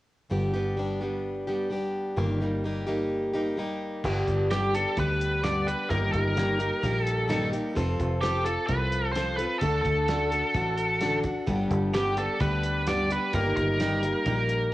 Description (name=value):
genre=folk rock and heartland rock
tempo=129 BPM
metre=4/4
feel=straight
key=unclear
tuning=A4 = 440 Hz
part: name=picked plugged-in steel-string acoustic guitar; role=accompaniment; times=0.3-14.7 s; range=G2 to A4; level=-28 LUFS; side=left 1 dB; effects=cassette tape
part: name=fingered electric bass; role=bass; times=0.3-14.7 s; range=F1 to D2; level=-30 LUFS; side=equal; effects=none
part: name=cloth-damped thuddy drum kit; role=drums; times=4.0-14.6 s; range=crash cymbal, hi-hat, kick drum, snare drum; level=-35 LUFS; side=right 1 dB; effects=cassette tape
part: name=biting lead guitar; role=melody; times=4.5-14.7 s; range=G4 to D5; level=-28 LUFS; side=right 1 dB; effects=overdrive, cassette tape, analog delay
room=small room ambience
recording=home recording on cassette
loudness=-24 LUFS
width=side -16 dB against mid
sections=0.3-4.0 A section; 4.0-14.7 B section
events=none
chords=0.3 G; 2.2 Eb/G; 4.0 G; 5.9 Eb/G; 7.8 F; 9.6 D; 11.5 G; 13.3 Eb/G